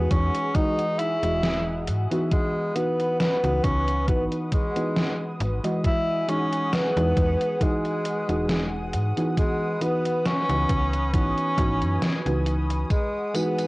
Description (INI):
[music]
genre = vaporwave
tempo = 68 BPM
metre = 4/4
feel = swing 54% on 16ths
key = E major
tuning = A4 = 440 Hz
[part]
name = mellow tenor saxophone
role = melody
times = 0.0-13.7 s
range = G#3 to E4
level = -26 LUFS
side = equal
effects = cassette tape, tape echo
[part]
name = mellow FM electric piano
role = accompaniment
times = 0.0-13.7 s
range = E3 to D#5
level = -28 LUFS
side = equal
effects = lush chorus, cassette tape
[part]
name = lush unison pad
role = sustained chords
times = 0.0-13.7 s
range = G#4 to D#6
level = -35 LUFS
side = equal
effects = chorus, phaser, cassette tape
[part]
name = slap-like FM bass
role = bass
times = 0.0-12.8 s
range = E1 to G#2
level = -26 LUFS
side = equal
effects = none
[part]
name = electronic kick drum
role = drums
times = 0.1-13.1 s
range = none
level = -24 LUFS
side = equal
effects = cassette tape
[part]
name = gated 80s digital drum machine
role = drums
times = 0.1-13.7 s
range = hi-hat, snare drum, tambourine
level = -29 LUFS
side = equal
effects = gated reverb, gated reverb snare, cassette tape
[sound]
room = light reverb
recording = home recording on cassette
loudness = -22 LUFS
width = side -22 dB against mid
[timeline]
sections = 0.0-13.7 A section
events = none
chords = 0.0 Emaj9; 2.3 C#m11; 5.8 Emaj9; 9.4 C#m11; 12.9 Emaj9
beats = 0.55 1.43 | 2.32 3.20 4.08 4.96 | 5.84 6.73 7.61 8.49 | 9.38 10.26 11.14 12.02 | 12.90